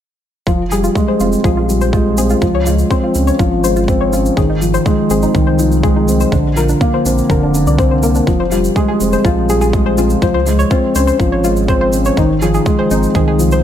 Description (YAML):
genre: piano and strings electronica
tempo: 123 BPM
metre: 4/4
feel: straight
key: F minor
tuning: A4 = 440 Hz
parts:
  - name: soft round pluck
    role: arpeggios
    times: 0.5-13.6 s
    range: D4 to D5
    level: -19 LUFS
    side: left 3 dB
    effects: chorus, sidechain pumping, digital delay
  - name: felt-muted upright piano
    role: riff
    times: 0.5-13.6 s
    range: D3 to D4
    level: -14 LUFS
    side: equal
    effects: digital delay
  - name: warm sub bass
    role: bass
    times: 0.5-13.6 s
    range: F1 to Db2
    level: -18 LUFS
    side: right 1 dB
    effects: sidechain pumping
  - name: electronic kick drum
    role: drums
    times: 0.5-13.2 s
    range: none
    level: -16 LUFS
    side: right 1 dB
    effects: none
  - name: shaker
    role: drums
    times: 0.5-13.6 s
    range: none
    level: -28 LUFS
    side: right 1 dB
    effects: none
room: light reverb, digital ambience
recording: none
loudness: -11 LUFS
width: side -10 dB against mid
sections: 0.5-13.6 A section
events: none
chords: 0.5 Fmadd9; 2.4 Dbmaj7; 4.4 Ab6; 6.3 Bbadd9; 8.3 Fmadd9; 10.2 Dbmaj7; 12.2 Ab6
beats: | 0.47 0.96 1.45 1.93 | 2.42 2.91 3.40 3.88 | 4.37 4.86 5.35 5.84 | 6.32 6.81 7.30 7.79 | 8.28 8.76 9.25 9.74 | 10.23 10.71 11.20 11.69 | 12.18 12.66 13.15